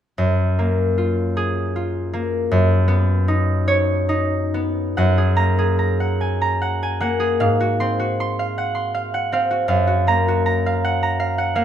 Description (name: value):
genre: classical, solo harp piece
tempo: 44-54 BPM (dotted quarters)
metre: 6/8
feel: rubato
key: Gb lydian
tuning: A4 = 441 Hz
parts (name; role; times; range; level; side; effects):
- concert harp; solo; 0.2-11.6 s; Gb2 to C6; -17 LUFS; equal; none
room: moderate recital hall reverb, RT60 1.3 s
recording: close, detailed microphones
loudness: -17 LUFS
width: side -10 dB against mid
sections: 0.2-5.0 A section; 5.0-11.6 B section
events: none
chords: 0.2 Gbmaj9; 2.5 Db11/Gb; 5.0 Gb69; 7.4 Ab13; 9.7 Gbmaj7